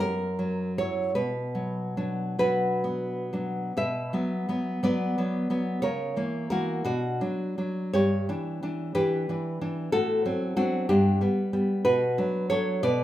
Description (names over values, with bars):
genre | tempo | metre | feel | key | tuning
romantic piece for solo classical guitar | 40-63 BPM (dotted quarters) | 6/8 | rubato | B minor | A4 = 440 Hz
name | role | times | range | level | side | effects
nylon-string guitar | solo | 0.0-13.0 s | F#2 to E5 | -25 LUFS | equal | none
room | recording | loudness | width
moderate large studio reverb, RT60 0.8 s | band playing live in one room | -25 LUFS | side -13 dB against mid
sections
0.0-3.7 A section; 3.7-13.0 B section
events
none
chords
0.0 F#7; 1.1 Bm; 5.8 A#dim/C#; 6.8 Bm; 7.9 G6; 9.9 F#dim/A; 10.9 G; 11.9 Bm